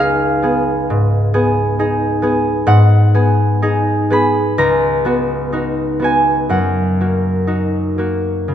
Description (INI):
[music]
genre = classical, solo harp piece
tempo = 60-69 BPM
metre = 4/4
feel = rubato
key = unclear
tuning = A4 = 439 Hz
[part]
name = concert harp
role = solo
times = 0.0-8.5 s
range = C#2 to B5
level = -13 LUFS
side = equal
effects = none
[sound]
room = moderate concert hall reverb, RT60 2.3 s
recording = none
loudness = -13 LUFS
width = side -10 dB against mid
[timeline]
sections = 0.0-8.5 A section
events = none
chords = 0.0 C#9; 2.7 G#m7; 4.6 C#9sus4; 6.5 F#6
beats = 0.90 1.78 | 2.68 3.64 4.60 5.54 | 6.51 7.50 8.49